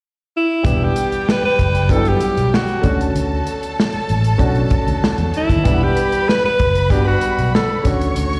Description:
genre	lush 1970s-style soul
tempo	96 BPM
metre	4/4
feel	straight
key	unclear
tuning	A4 = 441 Hz
part	bright alto saxophone	melody	0.4-8.0 s	E4 to B4	-21 LUFS	equal	slapback echo
part	warm studio violin section	second line	0.6-8.4 s	G3 to C#6	-28 LUFS	equal	slapback echo
part	warm baby grand piano	accompaniment	0.6-8.4 s	F#3 to F#5	-25 LUFS	equal	slapback echo
part	fingered electric bass	bass	0.6-8.4 s	E1 to E2	-21 LUFS	equal	none
part	warm soul drum kit	drums	0.6-8.4 s	hi-hat, kick drum, snare drum	-22 LUFS	equal	none
room	light reverb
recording	live gig heard through the venue's PA, recital hall reverb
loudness	-17 LUFS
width	mono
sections	0.6-8.4 A section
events	none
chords	0.0 N.C.; 0.6 Em7; 2.8 Bm7 (rootless); 5.7 Em7 (rootless); 7.9 Bm7 (rootless)

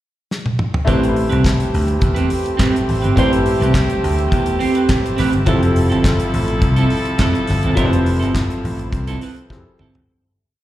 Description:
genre	disco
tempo	104 BPM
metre	4/4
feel	straight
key	A minor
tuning	A4 = 439 Hz
part	damped 70s drum kit	drums	0.3-10.1 s	handclaps, hi-hat, kick drum, snare drum, toms	-20 LUFS	equal	none
part	clear concert grand piano	accompaniment	0.8-10.1 s	F3 to C5	-22 LUFS	left 2 dB	slapback echo
part	clean electric guitar	accompaniment	0.9-10.0 s	C4 to C5	-21 LUFS	right 4 dB	slapback echo
part	muted French horn section	sustained chords	0.9-10.0 s	F3 to A4	-23 LUFS	right 1 dB	none
part	vintage slap bass	bass	0.9-10.1 s	F1 to A2	-18 LUFS	equal	none
room	light reverb, small room ambience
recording	live gig heard through the venue's PA, recital hall reverb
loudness	-14 LUFS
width	side -14 dB against mid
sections	0.0-0.9 pickup bar; 0.9-10.1 groove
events	drum fill 0.3-0.9, 9.5-10.1; fade-out 7.8-10.1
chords	0.0 N.C.; 0.9 Am9; 5.5 Fmaj7

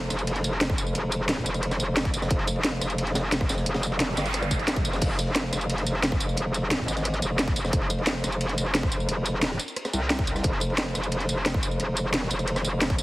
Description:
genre	dark technical drum and bass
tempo	177 BPM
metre	4/4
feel	straight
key	F minor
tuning	A4 = 440 Hz
part	metallic wobble bass	bass	0.0-13.0 s	F1 to C2	-27 LUFS	equal	chorus, overdrive, sidechain pumping
part	crunchy breakbeat drum kit	drums	0.1-13.0 s	ride cymbal, snare drum	-34 LUFS	equal	high-pass filter on cymbals, small room reverb, high-pass filter on snare, high-pass filter on room
part	drum and bass drum kit	drums	0.1-13.0 s	crash cymbal, hi-hat, rim click, snare drum, tambourine	-28 LUFS	equal	small room reverb
part	electronic kick drum	drums	0.7-13.0 s	none	-27 LUFS	equal	small room reverb
part	noise sweep	sound effects	3.9-5.0 s	none	-35 LUFS	right 3 dB	none
room	little or no reverb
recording	heavily compressed radio sound, multiband compression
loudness	-23 LUFS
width	side -18 dB against mid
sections	0.0-13.0 A section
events	noise sweep 3.9-5.0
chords	none

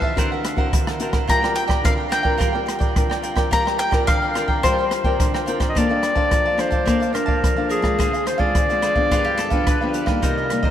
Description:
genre	samba and choro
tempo	107 BPM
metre	4/4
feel	straight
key	G minor, Bb major from 5.8 s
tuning	A4 = 440 Hz
part	bowl-back mandolin	second line	0.0-5.4, 9.1-10.1 s	F4 to Bb5	-24 LUFS	left 2 dB	none
part	cavaquinho	accompaniment	0.0-10.7 s	D4 to A5	-26 LUFS	right 4 dB	none
part	nylon-string guitar	accompaniment	0.0-10.7 s	G2 to C5	-25 LUFS	left 2 dB	none
part	open jazz drum kit	drums	0.0-10.7 s	hi-hat, kick drum, rim click	-22 LUFS	equal	none
part	warm clarinet	melody	5.7-10.7 s	Ab4 to Eb5	-21 LUFS	left 1 dB	none
room	wet cathedral reverb, RT60 7.5 s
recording	in a vast, echoing space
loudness	-17 LUFS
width	side -10 dB against mid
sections	0.0-5.8 A section; 5.8-10.7 B section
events	mandolin solo 0.0-5.8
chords	0.2 D7alt; 1.3 Gm7; 5.8 Bbmaj9; 8.0 Dm7b5; 9.1 G7

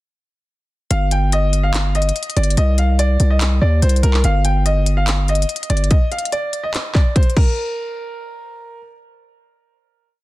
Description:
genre	hip hop, trap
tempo	144 BPM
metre	4/4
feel	half-time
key	unclear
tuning	A4 = 440 Hz
part	bright concert grand piano	melody	0.9-8.8 s	Bb4 to G5	-22 LUFS	equal	low-pass filter, tape echo
part	distorted 808-style bass	bass	0.9-5.9 s	G1 to Eb2	-15 LUFS	equal	distortion
part	trap drum kit	drums	0.9-7.5 s	crash cymbal, handclaps, hi-hat, kick drum	-18 LUFS	equal	vintage 12-bit sampler grit
room	little or no reverb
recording	dense, heavily limited modern master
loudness	-14 LUFS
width	side -18 dB against mid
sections	0.9-7.6 hook; 7.6-10.2 final hit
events	none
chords	0.9 Ebadd9/G; 2.6 Cm; 4.2 Ebadd9/G; 5.9 N.C.

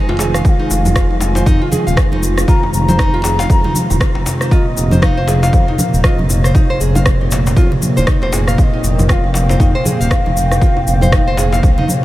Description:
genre	afro house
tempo	118 BPM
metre	4/4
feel	swing 59% on 16ths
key	unclear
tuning	A4 = 442 Hz
part	mellow bass bansuri	melody	0.0-12.0 s	Db5 to Bb5	-22 LUFS	left 1 dB	analog delay
part	warm analog pad	sustained chords	0.0-12.0 s	Bb2 to G5	-19 LUFS	equal	wide subtle chorus, sidechain pumping
part	nylon-string guitar	arpeggios	0.0-11.9 s	Eb4 to F5	-22 LUFS	equal	sidechain pumping, analog delay
part	smooth synth bass	bass	0.1-11.8 s	Eb1 to F2	-17 LUFS	equal	sidechain pumping
part	djembe	percussion	0.1-11.9 s	none	-24 LUFS	left 1 dB	none
part	electronic shaker and rim click	drums	0.2-12.0 s	none	-22 LUFS	equal	none
part	electronic kick drum	drums	0.4-11.8 s	none	-13 LUFS	equal	none
part	congas	percussion	0.9-12.0 s	none	-23 LUFS	right 1 dB	none
room	light reverb, small room ambience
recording	none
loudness	-11 LUFS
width	side -16 dB against mid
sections	0.0-12.0 A section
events	none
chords	0.0 Fm7; 4.5 Bbmadd9

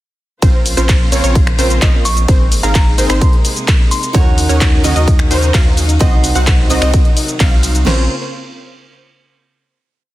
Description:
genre	EDM, festival progressive house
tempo	129 BPM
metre	4/4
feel	straight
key	Bb minor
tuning	A4 = 437 Hz
part	rich studio string section	sustained chords	0.4-8.1 s	C3 to C5	-24 LUFS	left 1 dB	sidechain pumping
part	wide unison pluck	arpeggios	0.4-8.0 s	C5 to Gb5	-23 LUFS	equal	sidechain pumping, digital delay
part	supersaw stab	riff	0.4-8.0 s	C4 to Gb5	-21 LUFS	right 1 dB	sidechain pumping, digital delay
part	saturated sub bass	bass	0.4-8.1 s	Ab1 to Eb2	-16 LUFS	equal	sidechain pumping
part	big-room dance drum kit	drums	0.4-8.0 s	crash cymbal, kick drum, snare drum	-12 LUFS	equal	none
part	big-room dance drum kit	drums	0.4-7.8 s	finger snaps, handclaps, hi-hat, ride cymbal, shaker	-19 LUFS	equal	soft clipping on snare
part	soft synth bell	melody	2.1-4.2 s	Bb5 to Db6	-22 LUFS	equal	chorus, tremolo, digital delay
part	picked steel-string acoustic guitar	accompaniment	4.1-8.0 s	C3 to C5	-21 LUFS	right 4 dB	sidechain pumping, digital delay
room	light reverb, digital ambience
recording	dense, heavily limited modern master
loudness	-10 LUFS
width	side -16 dB against mid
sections	0.4-7.9 drop; 7.9-9.7 final chord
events	drop 0.4-7.9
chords	0.4 Bbmadd9; 2.3 Abadd9; 4.1 Ebm7; 6.0 Cdim; 7.9 Bbmadd9

